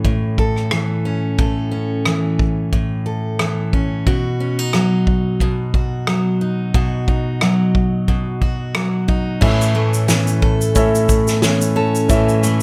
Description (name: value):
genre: acoustic pop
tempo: 90 BPM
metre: 4/4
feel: swing 55% on 16ths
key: unclear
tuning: A4 = 440 Hz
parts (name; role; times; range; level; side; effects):
- picked steel-string acoustic guitar; accompaniment; 0.0-12.6 s; A2 to A4; -20 LUFS; equal; none
- unplugged drum kit; drums; 0.0-12.6 s; crash cymbal, kick drum, rim click, shaker, snare drum; -22 LUFS; equal; none
- felt-muted upright piano; accompaniment; 9.4-12.6 s; C#4 to E5; -25 LUFS; equal; none
- nylon-string guitar; arpeggios; 9.4-12.6 s; E3 to A4; -26 LUFS; equal; none
room: moderate studio reverb, RT60 0.9 s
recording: none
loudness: -18 LUFS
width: mono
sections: 0.0-9.4 A section; 9.4-12.6 B section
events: none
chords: 0.0 A; 4.1 B; 9.4 A